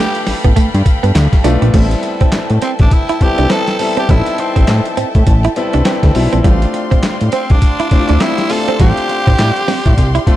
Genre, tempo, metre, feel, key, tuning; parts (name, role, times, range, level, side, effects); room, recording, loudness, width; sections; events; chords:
R&B, new jack swing; 102 BPM; 4/4; swing 60% on 16ths; A minor; A4 = 440 Hz
raspy tenor saxophone; melody; 0.0-10.4 s; C4 to A4; -19 LUFS; equal
bright grand piano; accompaniment; 0.0-10.4 s; G3 to G5; -20 LUFS; left 2 dB
warm studio string section; sustained chords; 0.0-10.4 s; G4 to C6; -23 LUFS; left 1 dB
direct-recorded clean electric guitar; riff; 0.0-10.3 s; G3 to E4; -20 LUFS; right 6 dB; wide subtle chorus
boom bap sampler-style drum kit; drums; 0.1-10.4 s; crash cymbal, handclaps, hi-hat, kick drum, snare drum, tambourine; -13 LUFS; equal
fat analog bass; bass; 0.3-10.2 s; A1 to A2; -13 LUFS; equal
little or no reverb; dark, warm production; -10 LUFS; side -14 dB against mid
0.0-1.7 A section; 1.7-10.4 B section
grand piano fill 5.3-6.4
0.0 G9; 1.7 Am7; 6.4 G7sus4/A